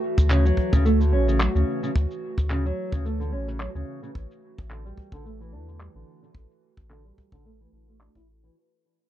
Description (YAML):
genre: folktronica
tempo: 109 BPM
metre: 4/4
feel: swing 56% on 16ths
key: unclear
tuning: A4 = 440 Hz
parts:
  - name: warbly tape-like pad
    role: sustained chords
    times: 0.0-8.6 s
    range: E3 to F#4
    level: -32 LUFS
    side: right 1 dB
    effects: chorus, built-in reverb, phaser
  - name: warm sub bass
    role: bass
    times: 0.2-8.5 s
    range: A1 to E2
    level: -23 LUFS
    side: equal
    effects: none
  - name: electronic shaker and handclaps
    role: drums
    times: 0.2-8.5 s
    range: none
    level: -31 LUFS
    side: equal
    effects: low-pass filter on perc, studio ambience, low-pass filter on snare
  - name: kick drum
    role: drums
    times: 0.2-8.2 s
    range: none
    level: -24 LUFS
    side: equal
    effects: studio ambience
  - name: nylon-string guitar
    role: arpeggios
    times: 0.3-8.5 s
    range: C#3 to E4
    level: -28 LUFS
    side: right 1 dB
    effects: low-pass filter, tape echo
room: little or no reverb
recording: dry, close 1970s-style studio recording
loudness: -21 LUFS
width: side -12 dB against mid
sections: 0.0-8.5 A section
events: fade-out 0.0-8.5; filter sweep on drum 0.0-8.5; filter sweep on nylon-string guitar 0.0-8.5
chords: 0.0 Dmaj7; 4.1 A7sus4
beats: 0.29 0.84 1.39 | 1.94 2.49 3.04 3.60 | 4.14 4.70 5.25 5.80 | 6.35 6.90 7.45 8.00